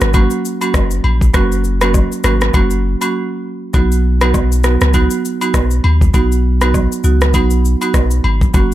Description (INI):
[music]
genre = afrobeats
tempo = 100 BPM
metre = 4/4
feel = swing 58% on 16ths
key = B major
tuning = A4 = 440 Hz
[part]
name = marimba with medium hard mallets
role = accompaniment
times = 0.0-8.7 s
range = F#3 to F#4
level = -18 LUFS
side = right 4 dB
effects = none
[part]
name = punchy sub bass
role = bass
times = 0.0-8.7 s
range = F#1 to D#2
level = -14 LUFS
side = equal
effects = none
[part]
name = afro-pop drum kit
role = drums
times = 0.0-8.7 s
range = kick drum, rim click, shaker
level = -15 LUFS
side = equal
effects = none
[part]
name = agogo bells and woodblock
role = percussion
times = 0.1-8.7 s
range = none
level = -24 LUFS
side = left 2 dB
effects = none
[sound]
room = digital ambience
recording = dark, warm production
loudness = -11 LUFS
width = side -14 dB against mid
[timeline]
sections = 0.0-8.7 A section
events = break 3.1-3.7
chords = 0.0 F#; 3.7 B